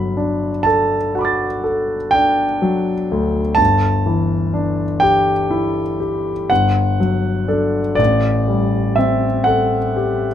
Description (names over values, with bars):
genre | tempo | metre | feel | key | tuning
classical, impressionist solo piano | 41 BPM (dotted quarters) | 9/8 | rubato | unclear | A4 = 440 Hz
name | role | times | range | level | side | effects
clear grand piano | solo | 0.0-10.3 s | G1 to A6 | -15 LUFS | equal | none
room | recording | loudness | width
light reverb | none | -15 LUFS | side -10 dB against mid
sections
0.0-10.3 A section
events
none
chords
0.0 Gmaj9; 3.6 Emadd11/G; 6.5 Dadd11/G; 8.0 Am7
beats
0.68 2.15 | 3.60 5.04 6.50 | 7.99 9.46